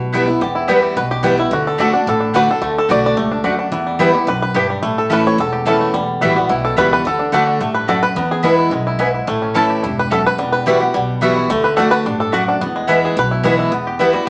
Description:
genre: bluegrass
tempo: 216 BPM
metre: 4/4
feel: straight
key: E dorian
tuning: A4 = 441 Hz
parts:
  - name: picked steel-string acoustic guitar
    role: accompaniment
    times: 0.0-14.3 s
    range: E2 to F#4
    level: -20 LUFS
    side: equal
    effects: none
  - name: upright bass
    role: bass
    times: 0.0-14.2 s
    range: E1 to E2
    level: -29 LUFS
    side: equal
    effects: none
  - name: mandolin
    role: stabs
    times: 0.1-14.1 s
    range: G3 to A5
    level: -20 LUFS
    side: equal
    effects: none
  - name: bluegrass banjo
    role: melody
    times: 0.4-14.3 s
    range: E3 to D5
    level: -21 LUFS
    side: equal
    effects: none
  - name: clear fiddle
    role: melody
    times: 14.0-14.3 s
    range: E4 to F#4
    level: -26 LUFS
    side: equal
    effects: none
room: wet studio reverb, RT60 0.8 s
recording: none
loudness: -16 LUFS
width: mono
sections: 0.0-4.8 A section; 4.8-13.7 A section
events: five-string banjo solo 0.0-13.7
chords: 0.0 Em; 1.5 D; 3.7 Em; 4.8 A; 5.9 Emadd9; 7.1 D; 8.2 E; 9.3 A; 10.4 Emadd9; 11.5 D; 12.6 E; 13.7 Em

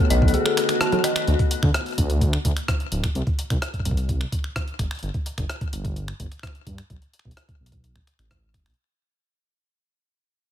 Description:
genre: IDM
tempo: 128 BPM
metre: 4/4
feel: straight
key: unclear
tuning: A4 = 438 Hz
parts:
  - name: glassy FM pad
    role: sustained chords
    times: 0.0-1.3 s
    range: D#3 to F#4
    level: -26 LUFS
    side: left 1 dB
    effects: ensemble chorus, built-in reverb
  - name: dark detuned synth bell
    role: arpeggios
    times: 0.0-1.1 s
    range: G#4 to A5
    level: -25 LUFS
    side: left 3 dB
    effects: chorus, ping-pong delay
  - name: dark detuned saw bass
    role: bass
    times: 0.1-8.7 s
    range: D1 to G2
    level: -23 LUFS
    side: equal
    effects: tube saturation
  - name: jungle sampler-style drum kit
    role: drums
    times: 0.1-8.8 s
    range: finger snaps, hi-hat, rim click, toms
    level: -28 LUFS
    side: equal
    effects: small room ambience, ping-pong delay
  - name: electronic kick drum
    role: drums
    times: 0.2-8.6 s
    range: none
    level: -24 LUFS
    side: equal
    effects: small room ambience
room: digital ambience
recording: none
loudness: -21 LUFS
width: side -10 dB against mid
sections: 0.0-1.3 A section; 1.3-8.8 B section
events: break 0.3-1.3; fade-out 1.3-8.8; filter sweep on detuned saw bass 1.3-8.8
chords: 0.0 B7; 1.3 N.C.; 3.2 C5; 5.0 N.C.; 6.9 B5

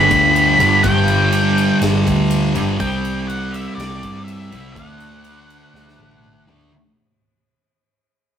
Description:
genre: rock, shoegaze and dream pop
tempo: 122 BPM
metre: 4/4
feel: straight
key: G major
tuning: A4 = 441 Hz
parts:
  - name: octave-fuzz lead guitar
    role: melody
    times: 0.0-6.4 s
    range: D5 to B5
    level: -17 LUFS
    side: equal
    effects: distortion
  - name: thick fuzz guitar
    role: riff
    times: 0.0-6.7 s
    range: G2 to D4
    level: -18 LUFS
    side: equal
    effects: distortion
  - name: vintage muted picked electric bass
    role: bass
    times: 0.0-6.7 s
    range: G1 to G2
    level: -22 LUFS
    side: equal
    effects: none
  - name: big rock drum kit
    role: drums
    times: 0.1-6.7 s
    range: kick drum, ride cymbal, snare drum, toms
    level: -26 LUFS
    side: equal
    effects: none
room: moderate stone room reverb, RT60 1.1 s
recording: rough rehearsal-room recording, warm saturation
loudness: -13 LUFS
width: side -8 dB against mid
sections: 0.0-6.7 A section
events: fade-out 0.0-6.7; drum fill 5.7-6.7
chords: 0.0 G; 2.8 C; 4.8 D

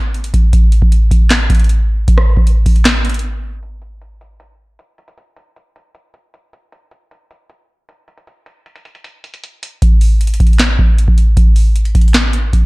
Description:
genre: hip hop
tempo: 155 BPM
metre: 4/4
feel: half-time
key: none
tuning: none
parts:
  - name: booming analog drum machine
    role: drums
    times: 0.1-12.6 s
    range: handclaps, hi-hat, kick drum, rim click, snare drum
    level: -10 LUFS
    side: equal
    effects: none
room: little or no reverb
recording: dark, warm production, low-pass filter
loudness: -9 LUFS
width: side -24 dB against mid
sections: 0.0-3.6 A section; 3.6-9.8 B section; 9.8-12.7 C section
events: break 3.2-3.6; filter sweep 3.6-9.8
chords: none

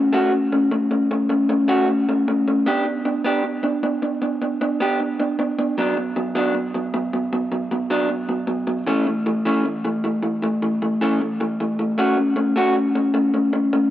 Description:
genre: rock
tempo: 154 BPM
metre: 4/4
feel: straight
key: unclear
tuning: A4 = 440 Hz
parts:
  - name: electric guitar through a small old amp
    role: solo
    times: 0.0-13.9 s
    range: E3 to G4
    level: -18 LUFS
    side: equal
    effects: spring reverb
room: little or no reverb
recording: recorded outdoors, with no room sound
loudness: -18 LUFS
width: side -13 dB against mid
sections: 0.0-12.0 A section; 12.0-13.9 A section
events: none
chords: 0.0 A6; 2.7 Bm; 5.8 F#sus4; 8.9 A; 12.0 A6

